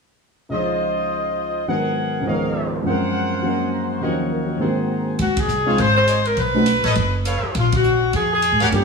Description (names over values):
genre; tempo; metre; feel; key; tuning
jazz, big band swing; 205 BPM; 4/4; swing 60% on 8ths; Db major; A4 = 443 Hz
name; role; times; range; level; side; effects
warm grand piano; accompaniment; 0.5-6.7, 8.7-8.8 s; Db2 to C5; -22 LUFS; equal; none
bright trumpet section; stabs; 0.5-8.7 s; F4 to Db6; -24 LUFS; equal; none
clear saxophone section; melody; 5.2-8.8 s; F4 to C5; -18 LUFS; left 2 dB; none
upright bass; bass; 5.2-8.8 s; Gb1 to Ab2; -21 LUFS; left 1 dB; none
swinging big-band drum kit; drums; 5.2-8.8 s; hi-hat, kick drum, ride cymbal; -27 LUFS; right 1 dB; none
room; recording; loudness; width
moderate echo chamber reverb, RT60 1.8 s; heard from further back in the room, small room ambience; -18 LUFS; side -4 dB against mid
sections
0.5-5.2 A section; 5.2-8.8 B section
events
band accent 5.3, 7.7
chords
0.5 Dbmaj9; 1.7 Abm9; 2.3 Db13; 2.9 Gbmaj9#11; 4.0 Ebm7; 4.6 Ab9; 5.2 Dbmaj7; 6.4 Cb9; 7.5 Bb7(no3)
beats
| 0.50 0.80 1.09 1.39 | 1.68 1.97 2.27 2.56 | 2.85 3.15 3.44 3.73 | 4.03 4.32 4.61 4.91 | 5.20 5.49 5.78 6.08 | 6.37 6.66 6.96 7.25 | 7.54 7.84 8.13 8.42 | 8.72